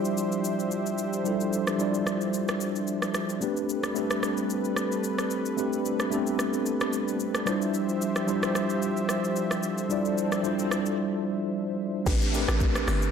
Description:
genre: amapiano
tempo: 111 BPM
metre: 4/4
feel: swing 55% on 16ths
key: unclear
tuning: A4 = 440 Hz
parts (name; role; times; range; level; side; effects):
- mellow tine electric piano; accompaniment; 0.0-13.1 s; G3 to D5; -27 LUFS; equal; medium stereo tremolo
- warm analog pad; sustained chords; 0.0-12.0 s; F3 to E5; -32 LUFS; right 1 dB; chorus, sidechain pumping
- afro-pop drum kit; drums; 0.0-13.1 s; crash cymbal, hi-hat, kick drum, rim click, shaker; -32 LUFS; equal; none
- swell and downlifter; sound effects; 9.7-13.1 s; none; -37 LUFS; left 1 dB; none
- hollow log drum bass; bass; 12.1-13.1 s; G1 to A1; -26 LUFS; equal; none
room: moderate lush hall reverb, RT60 1.8 s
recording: dark, warm production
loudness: -25 LUFS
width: side -7 dB against mid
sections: 0.0-12.1 A section; 12.1-13.1 B section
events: swell 9.7-12.1; break 11.0-12.1; drop 12.1-13.1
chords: 0.0 Dm11; 3.4 Am11; 7.5 Dm11; 12.1 Am11

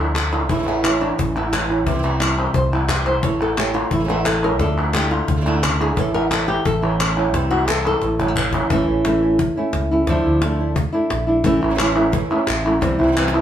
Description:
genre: flamenco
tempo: 175 BPM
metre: 4/4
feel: straight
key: unclear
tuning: A4 = 441 Hz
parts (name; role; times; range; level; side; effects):
- flamenco guitar; melody; 0.0-13.4 s; A2 to C#5; -20 LUFS; equal; none
- flamenco guitar; stabs; 0.0-13.4 s; C3 to E4; -25 LUFS; right 4 dB; none
- fretless electric bass; bass; 0.0-13.4 s; A1 to D2; -24 LUFS; equal; none
- cajon; percussion; 0.1-13.4 s; none; -25 LUFS; left 2 dB; none
- palmas hand claps; percussion; 0.2-8.7, 11.6-13.4 s; none; -23 LUFS; left 1 dB; none
room: wet studio reverb, RT60 0.6 s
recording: band playing live in one room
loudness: -16 LUFS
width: side -10 dB against mid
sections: 0.0-8.7 A section; 8.7-13.4 B section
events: nylon-string guitar solo 0.0-8.7; drum fill 8.0-8.7, 13.2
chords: 0.5 A; 1.9 C; 3.2 A; 4.6 Dmadd9; 6.0 A; 7.3 C; 8.0 A; 10.1 Dmadd9; 11.5 A; 12.8 C

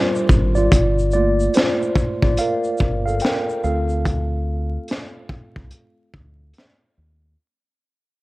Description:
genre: lo-fi hip hop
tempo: 72 BPM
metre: 4/4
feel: swing 61% on 16ths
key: G minor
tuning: A4 = 436 Hz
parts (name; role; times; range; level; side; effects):
- mellow tine electric piano; accompaniment; 0.0-7.4 s; A3 to G5; -21 LUFS; equal; medium stereo tremolo, cassette tape, low-pass filter
- crunchy breakbeat drum kit; drums; 0.2-6.8 s; hi-hat, kick drum, shaker, snare drum; -20 LUFS; equal; vintage 12-bit sampler grit
- deep dub fingered electric bass; bass; 0.3-7.3 s; G1 to Eb2; -21 LUFS; equal; none
room: light reverb, studio ambience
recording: vinyl crackle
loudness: -17 LUFS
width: side -20 dB against mid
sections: 0.7-7.4 A section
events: fade-out 0.7-7.4; tine electric piano solo 0.7-7.4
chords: 0.0 Gm9; 0.7 Gm7; 3.6 Dm7

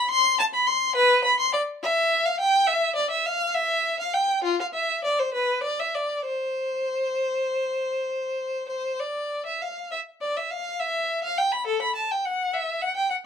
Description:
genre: classical, baroque-style suite movement for unaccompanied violin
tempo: 68 BPM (dotted quarters)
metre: 12/8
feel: rubato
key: C major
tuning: A4 = 440 Hz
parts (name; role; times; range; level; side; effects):
- rich violin; solo; 0.0-13.2 s; F4 to C6; -22 LUFS; left 1 dB; none
room: little or no reverb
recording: close, detailed microphones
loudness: -22 LUFS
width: side -7 dB against mid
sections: 0.0-9.9 A section; 9.9-13.3 A section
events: none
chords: none

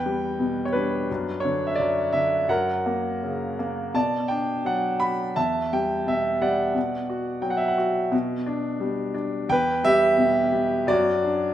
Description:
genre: classical, lyrical solo piano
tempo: 86 BPM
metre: 4/4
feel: rubato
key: B minor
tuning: A4 = 440 Hz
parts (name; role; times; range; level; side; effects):
- warm concert grand piano; solo; 0.0-11.5 s; E2 to B5; -21 LUFS; equal; none
room: wet recital hall reverb, RT60 1.4 s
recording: none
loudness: -21 LUFS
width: side -11 dB against mid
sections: 0.0-11.5 A section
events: none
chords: 0.0 Em; 1.1 Dmaj13/F#; 2.5 F#; 4.0 Bm; 5.4 Em; 6.8 Bm; 8.1 G/B; 9.5 Em; 10.9 D/F#

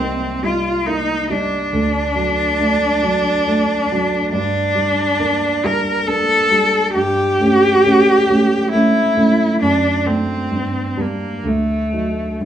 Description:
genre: classical, romantic duo for cello and grand piano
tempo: 68 BPM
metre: 3/4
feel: rubato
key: G minor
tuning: A4 = 440 Hz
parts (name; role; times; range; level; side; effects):
- rich cello; melody; 0.0-12.4 s; A3 to Bb4; -16 LUFS; equal; none
- dark grand piano; accompaniment; 0.0-12.5 s; C2 to Eb4; -19 LUFS; right 2 dB; none
room: moderate stone room reverb, RT60 1.2 s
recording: small room ambience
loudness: -14 LUFS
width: side -10 dB against mid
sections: 0.0-12.5 A section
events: none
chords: 0.0 Cm7; 1.7 D; 4.3 Gm; 7.0 A7/G; 9.6 D/F#; 10.5 Gm; 11.5 D

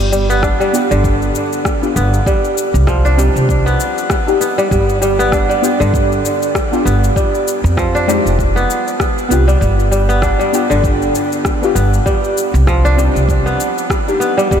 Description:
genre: organic downtempo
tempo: 98 BPM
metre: 4/4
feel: swing 57% on 16ths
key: unclear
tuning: A4 = 440 Hz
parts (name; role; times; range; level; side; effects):
- deep mellow chord stab; accompaniment; 0.0-14.5 s; Ab3 to G4; -21 LUFS; left 3 dB; chorus, phaser, sidechain pumping, tape echo, shimmer reverb
- kora; arpeggios; 0.0-14.6 s; D3 to D4; -16 LUFS; right 1 dB; tape echo, shimmer reverb
- upright bass; bass; 0.0-14.6 s; F1 to F2; -15 LUFS; equal; sidechain pumping
- electronic shaker and rim click; drums; 0.0-14.6 s; none; -24 LUFS; left 3 dB; none
- electronic kick drum; drums; 0.4-14.6 s; none; -19 LUFS; equal; none
room: moderate huge ambient reverb, RT60 7.2 s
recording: dreamy mix soaked in reverb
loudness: -12 LUFS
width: side -8 dB against mid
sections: 0.0-14.6 A section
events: none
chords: 0.0 G7; 2.3 Cmadd9; 4.7 G7; 7.2 Fm7; 9.6 G7; 12.1 Cmadd9

